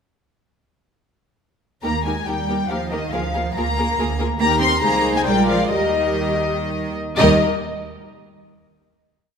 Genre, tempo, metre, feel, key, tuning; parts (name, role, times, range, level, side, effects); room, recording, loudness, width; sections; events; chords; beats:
quick classical-period movement for string orchestra; 122-146 BPM; 3/4; rubato; Eb major; A4 = 440 Hz
warm symphonic violin section; melody; 1.8-7.4 s; Eb5 to C6; -22 LUFS; left 4 dB
warm symphonic violin section; second line; 1.8-7.4 s; G4 to Eb5; -24 LUFS; left 4 dB
dark symphonic viola section; accompaniment; 1.8-7.4 s; G3 to G4; -24 LUFS; right 2 dB
dark symphonic double bass section; bass; 1.8-7.4 s; Bb1 to Eb2; -26 LUFS; right 4 dB
warm symphonic cello section; bass; 1.8-7.4 s; Eb3 to C4; -26 LUFS; right 4 dB
moderate concert hall reverb, RT60 1.9 s; minimal, uncompressed stereo recording; -17 LUFS; side -6 dB against mid
1.8-7.2 A section; 7.2-8.6 final chord
1.8 Eb; 3.1 Bb7/D; 4.4 Eb; 4.8 Ab/C; 5.3 Bb7; 5.7 Eb
| 1.84 2.28 2.70 | 3.13 3.57 3.99 | 4.41 4.83 5.26 | 5.73 6.21 6.70 | 7.18